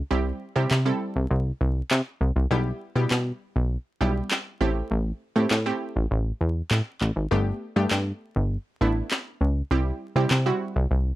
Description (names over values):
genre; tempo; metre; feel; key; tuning
dance-pop; 100 BPM; 4/4; straight; unclear; A4 = 444 Hz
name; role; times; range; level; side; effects
plucky analog bass; bass; 0.0-11.1 s; G1 to C3; -23 LUFS; equal; none
wide unison pluck; accompaniment; 0.1-11.2 s; G3 to A4; -27 LUFS; moving between left 3 dB and right 5 dB; auto-pan
electronic handclaps and snare drum; drums; 0.7-10.5 s; none; -26 LUFS; equal; none
room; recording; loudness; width
light reverb; vinyl crackle; -23 LUFS; side -16 dB against mid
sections
0.0-11.2 A section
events
none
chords
0.1 C; 2.5 Em/B; 4.6 Am7; 7.3 Gadd9; 9.7 C